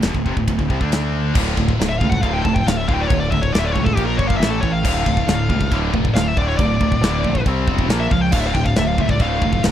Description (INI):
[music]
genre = heavy metal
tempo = 137 BPM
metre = 4/4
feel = straight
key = D minor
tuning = A4 = 440 Hz
[part]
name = scooped high-gain guitar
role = riff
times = 0.0-9.7 s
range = D2 to D4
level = -24 LUFS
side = left 9 dB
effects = distortion
[part]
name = scooped high-gain guitar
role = riff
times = 0.0-9.7 s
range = D2 to D4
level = -24 LUFS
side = right 10 dB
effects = distortion
[part]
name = growling fingered electric bass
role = bass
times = 0.0-9.7 s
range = D1 to D2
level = -22 LUFS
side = equal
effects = overdrive
[part]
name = modern studio drum kit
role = drums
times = 0.0-9.7 s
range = china cymbal, crash cymbal, kick drum, ride cymbal, snare drum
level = -21 LUFS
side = equal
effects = none
[part]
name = heavy high-gain guitar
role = riff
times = 1.3-9.7 s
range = D2 to F4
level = -28 LUFS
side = left 1 dB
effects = distortion
[part]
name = high-gain lead guitar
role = melody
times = 1.9-9.6 s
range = G4 to A5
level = -23 LUFS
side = left 3 dB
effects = distortion
[sound]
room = little or no reverb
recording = dry, close 1970s-style studio recording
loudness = -16 LUFS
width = side -10 dB against mid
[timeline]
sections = 0.0-1.3 A section; 1.3-9.7 B section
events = lead electric guitar solo 1.3-9.7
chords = 0.0 Dm; 4.0 Bb5; 4.4 A5; 4.8 Dm; 7.5 C5; 7.9 Bb5; 8.3 Dm